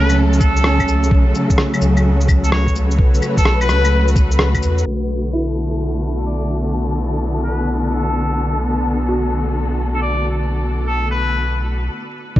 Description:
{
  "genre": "future garage",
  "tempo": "128 BPM",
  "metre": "4/4",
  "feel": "swing 66% on 16ths",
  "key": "B minor",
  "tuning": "A4 = 439 Hz",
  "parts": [
    { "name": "trumpet with straight mute", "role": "melody", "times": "0.0-11.6 s", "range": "A4 to D5", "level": "-24 LUFS", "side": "left 1 dB", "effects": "tape echo" },
    { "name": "felt-muted upright piano", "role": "accompaniment", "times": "0.0-12.4 s", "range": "A3 to F#4", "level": "-27 LUFS", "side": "right 3 dB", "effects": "sidechain pumping, tape echo" },
    { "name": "muted studio string section", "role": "sustained chords", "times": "0.0-11.9 s", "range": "C#3 to B4", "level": "-21 LUFS", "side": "left 1 dB", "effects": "sidechain pumping" },
    { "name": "warm sub bass", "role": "bass", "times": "0.0-12.4 s", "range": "B1 to E2", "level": "-18 LUFS", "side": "equal", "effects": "tube saturation, sidechain pumping" },
    { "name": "electronic shaker, claves, cabasa and rim click", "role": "drums", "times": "0.1-4.8 s", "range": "none", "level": "-22 LUFS", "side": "equal", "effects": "studio ambience" },
    { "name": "electronic kick drum", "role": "drums", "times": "0.4-4.6, 12.4 s", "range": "none", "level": "-16 LUFS", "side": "equal", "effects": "studio ambience" }
  ],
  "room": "light reverb, small room ambience",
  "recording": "vinyl crackle, low-pass filter, nothing above 7.7 kHz",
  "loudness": "-15 LUFS",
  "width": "side -14 dB against mid",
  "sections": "0.0-4.9 A section; 4.9-12.4 B section",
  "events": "filter sweep 4.9-12.4; stop 11.9-12.4",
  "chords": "0.0 F#m/B; 4.9 Bm7"
}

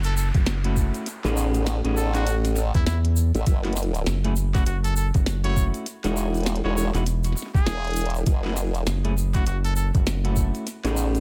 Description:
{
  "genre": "glitch hop",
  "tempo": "100 BPM",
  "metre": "4/4",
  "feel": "swing 60% on 16ths",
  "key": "F# dorian",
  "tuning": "A4 = 440 Hz",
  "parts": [
    { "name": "brilliant trumpet", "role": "melody", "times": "0.0-9.9 s", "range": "E4 to C#5", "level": "-36 LUFS", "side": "equal", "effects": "analog delay" },
    { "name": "rubbery square bass", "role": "bass", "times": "0.0-10.5 s", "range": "E1 to E2", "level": "-25 LUFS", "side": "equal", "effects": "none" },
    { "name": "glitchy drum kit", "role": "drums", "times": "0.0-11.2 s", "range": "hi-hat, snare drum", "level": "-34 LUFS", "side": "equal", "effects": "small room ambience, analog delay" },
    { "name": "egg shaker", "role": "percussion", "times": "0.0-11.2 s", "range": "none", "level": "-40 LUFS", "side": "equal", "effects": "none" },
    { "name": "downlifter", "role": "sound effects", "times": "0.0-3.5 s", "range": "none", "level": "-44 LUFS", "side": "equal", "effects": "none" },
    { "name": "electronic kick drum", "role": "drums", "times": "0.3-10.5 s", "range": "none", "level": "-23 LUFS", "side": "equal", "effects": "overdrive, small room ambience" },
    { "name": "semi-hollow electric guitar", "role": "stabs", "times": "0.6-11.2 s", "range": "G#3 to G#4", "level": "-32 LUFS", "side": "equal", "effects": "sidechain pumping, analog delay" },
    { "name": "formant-sweep wobble bass", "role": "bass", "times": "1.2-11.2 s", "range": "E1 to A1", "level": "-26 LUFS", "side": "equal", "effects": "chorus" }
  ],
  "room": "little or no reverb",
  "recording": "echo-heavy mix",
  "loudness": "-24 LUFS",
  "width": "mono",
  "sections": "0.0-11.2 A section",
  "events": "none",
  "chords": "0.0 F#m7; 1.1 Amaj9#11; 3.5 F#m7; 5.9 Emaj9; 8.3 F#m7; 10.7 Amaj9#11"
}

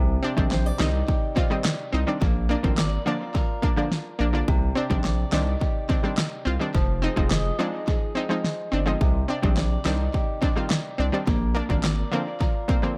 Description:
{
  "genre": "dancehall",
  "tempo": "106 BPM",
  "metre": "4/4",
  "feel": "straight",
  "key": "C minor",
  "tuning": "A4 = 440 Hz",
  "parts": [
    { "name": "fingerpicked swing-style acoustic guitar", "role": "arpeggios", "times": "0.0-13.0 s", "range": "C3 to Eb5", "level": "-34 LUFS", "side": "equal", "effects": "none" },
    { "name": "saturated sub bass", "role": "bass", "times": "0.0-12.0 s", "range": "F1 to C2", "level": "-28 LUFS", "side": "equal", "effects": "none" },
    { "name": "analog pluck", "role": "accompaniment", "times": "0.2-12.9 s", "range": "D3 to F4", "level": "-30 LUFS", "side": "equal", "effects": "chorus, sidechain pumping, tape echo" },
    { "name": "pop drum kit", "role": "drums", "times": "0.4-13.0 s", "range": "handclaps, kick drum, rim click, snare drum", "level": "-27 LUFS", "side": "equal", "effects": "tape echo" }
  ],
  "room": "light reverb",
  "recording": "echo-heavy mix",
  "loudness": "-24 LUFS",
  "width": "mono",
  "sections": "0.0-13.0 A section",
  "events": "none",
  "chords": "0.0 Cmadd9; 2.2 Bb; 4.5 Cmadd9; 6.7 Fm7; 9.0 Cmadd9; 11.3 Bb"
}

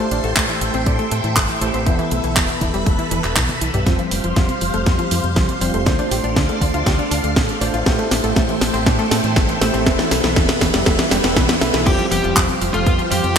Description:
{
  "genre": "italo disco",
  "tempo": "120 BPM",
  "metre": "4/4",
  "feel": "straight",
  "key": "unclear",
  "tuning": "A4 = 440 Hz",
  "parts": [
    { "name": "phased string machine", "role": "sustained chords", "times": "0.0-13.4 s", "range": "F3 to C6", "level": "-25 LUFS", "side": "equal", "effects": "ensemble chorus, phaser, shimmer reverb" },
    { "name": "analog pluck", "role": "arpeggios", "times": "0.0-13.4 s", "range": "E2 to G4", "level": "-23 LUFS", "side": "left 1 dB", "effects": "chorus, ping-pong delay, shimmer reverb" },
    { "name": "tine electric piano", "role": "stabs", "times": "0.0-13.4 s", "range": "G3 to E5", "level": "-25 LUFS", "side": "right 1 dB", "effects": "medium stereo tremolo, low-pass filter, ping-pong delay, shimmer reverb" },
    { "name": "fingered electric bass with an envelope filter", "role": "bass", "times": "0.1-13.3 s", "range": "E1 to A2", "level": "-24 LUFS", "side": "equal", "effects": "none" },
    { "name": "house drum kit", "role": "drums", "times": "0.1-13.3 s", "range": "crash cymbal, handclaps, hi-hat, snare drum, toms", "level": "-20 LUFS", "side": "equal", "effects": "none" },
    { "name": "electronic kick drum", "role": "drums", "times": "0.4-13.0 s", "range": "none", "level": "-19 LUFS", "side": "equal", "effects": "none" },
    { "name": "fuzz lead guitar", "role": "melody", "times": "11.9-13.4 s", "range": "F4 to G5", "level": "-21 LUFS", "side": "equal", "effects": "distortion, ping-pong delay, shimmer reverb" }
  ],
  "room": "wet lush hall reverb, RT60 2.1 s",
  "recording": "bright 1980s-style digital production",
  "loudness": "-15 LUFS",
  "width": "side -7 dB against mid",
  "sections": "0.0-3.9 A section; 3.9-11.9 B section; 11.9-13.4 C section",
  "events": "drum fill 3.1-3.9, 3.9-11.9",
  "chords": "0.0 Am7; 1.9 Esus4; 3.9 Fsus2; 5.9 Dm7; 7.9 Am7; 9.9 Esus4; 11.9 Fsus2"
}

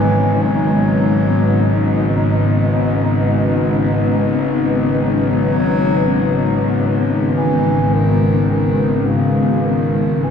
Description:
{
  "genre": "dark ambient drone",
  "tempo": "free time",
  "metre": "none",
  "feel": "none",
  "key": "unclear",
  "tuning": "A4 = 440 Hz",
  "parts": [
    { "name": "mellow bass clarinet", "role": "melody", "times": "0.0-10.3 s", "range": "C#3 to F#3", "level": "-20 LUFS", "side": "equal", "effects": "tape echo" },
    { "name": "sweeping resonant pad", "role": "sustained chords", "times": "0.0-10.3 s", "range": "G#2 to D#4", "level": "-17 LUFS", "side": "left 2 dB", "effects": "chorus" },
    { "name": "bowed-like drone", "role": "drone", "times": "0.0-10.3 s", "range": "G#1", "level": "-18 LUFS", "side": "equal", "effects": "built-in reverb" }
  ],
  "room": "wet cathedral reverb, RT60 5.8 s",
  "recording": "in a vast, echoing space",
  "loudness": "-13 LUFS",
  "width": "side -7 dB against mid",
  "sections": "0.0-10.3 A section",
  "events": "none",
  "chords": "0.0 Badd9/G#"
}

